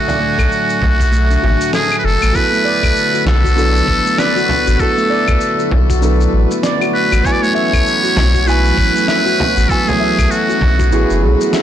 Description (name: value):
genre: organic downtempo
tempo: 98 BPM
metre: 4/4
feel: swing 60% on 16ths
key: B dorian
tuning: A4 = 440 Hz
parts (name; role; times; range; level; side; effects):
- trumpet with metal mute; melody; 0.0-11.2 s; F#4 to D5; -16 LUFS; equal; ping-pong delay
- warm analog pad; sustained chords; 0.0-11.6 s; A2 to F#4; -23 LUFS; left 1 dB; chorus, sidechain pumping
- handpan; arpeggios; 0.0-11.6 s; A3 to E5; -20 LUFS; left 1 dB; tape echo
- drifting glass-harmonics texture; texture; 0.0-2.4 s; G#5; -34 LUFS; left 2 dB; none
- electronic shaker, claves and snare drum; drums; 0.1-11.6 s; none; -24 LUFS; left 1 dB; none
- frame drum; percussion; 0.1-10.8 s; none; -23 LUFS; right 1 dB; none
- warm sub bass; bass; 0.4-11.4 s; F#1 to B1; -14 LUFS; equal; transformer saturation, sidechain pumping
- electronic kick drum; drums; 0.4-10.9 s; none; -20 LUFS; equal; none
- felt-muted upright piano; accompaniment; 2.3-11.6 s; F#3 to G#5; -21 LUFS; right 3 dB; sidechain pumping, tape echo
room: light reverb, studio ambience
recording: blown-out, overdriven recording, overdrive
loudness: -11 LUFS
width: side -10 dB against mid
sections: 0.0-2.4 A section; 2.4-11.6 B section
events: none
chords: 0.0 D; 2.4 Bm7; 7.2 A6